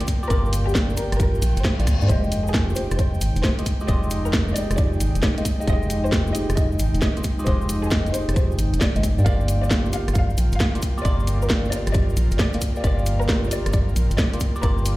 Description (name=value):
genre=UK garage, two-step garage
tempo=134 BPM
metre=4/4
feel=swing 67% on 16ths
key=F dorian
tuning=A4 = 441 Hz
part: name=barky tine electric piano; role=stabs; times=0.0-15.0 s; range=Ab3 to Eb5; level=-29 LUFS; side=equal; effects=phaser, ping-pong delay
part: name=garage drum kit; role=drums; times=0.0-15.0 s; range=hi-hat, rim click, snare drum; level=-26 LUFS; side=equal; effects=none
part: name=cabasa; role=percussion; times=0.0-15.0 s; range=none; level=-40 LUFS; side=left 4 dB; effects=none
part: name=airy breathy pad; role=texture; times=0.0-15.0 s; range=Ab3 to G5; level=-32 LUFS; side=equal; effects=chorus, sidechain pumping
part: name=electronic kick drum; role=drums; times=0.1-14.8 s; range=none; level=-21 LUFS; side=equal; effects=none
part: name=warm chamber violin section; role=melody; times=0.3-14.8 s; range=G4 to F5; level=-31 LUFS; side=left 1 dB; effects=tape echo
part: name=organ-like FM bass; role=bass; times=0.3-15.0 s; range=F1 to G2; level=-22 LUFS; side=equal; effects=tube saturation, sidechain pumping
part: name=reverse cymbal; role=sound effects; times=1.3-2.1 s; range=none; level=-36 LUFS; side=left 5 dB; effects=none
room=digital ambience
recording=played on a big sound system in a bare room, large studio reverb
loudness=-19 LUFS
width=side -18 dB against mid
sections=0.0-15.0 A section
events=reverse cymbal 1.3-2.1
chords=0.0 Gm7; 2.1 Fm9; 9.0 Gm7